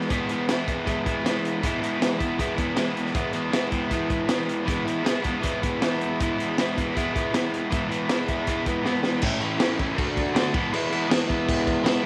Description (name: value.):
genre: garage rock duo or trio.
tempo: 158 BPM.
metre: 4/4.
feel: straight.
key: E mixolydian.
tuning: A4 = 439 Hz.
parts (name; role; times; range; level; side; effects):
overdriven electric guitar; riff; 0.0-12.1 s; A2 to F#4; -27 LUFS; equal; none.
crunchy breakbeat drum kit; drums; 0.0-11.9 s; crash cymbal, hi-hat, kick drum, snare drum; -29 LUFS; equal; none.
room: light reverb, studio ambience.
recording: none.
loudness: -25 LUFS.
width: mono.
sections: 0.0-9.2 A section; 9.2-12.1 B section.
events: drum fill 8.9-9.2.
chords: 0.0 E; 9.2 A; 10.0 D; 10.5 E.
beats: | 0.11 0.49 0.88 1.26 | 1.64 2.02 2.40 2.78 | 3.16 3.54 3.92 4.30 | 4.68 5.07 5.45 5.83 | 6.20 6.58 6.96 7.34 | 7.72 8.10 8.48 8.85 | 9.23 9.61 9.98 10.36 | 10.73 11.11 11.48 11.85.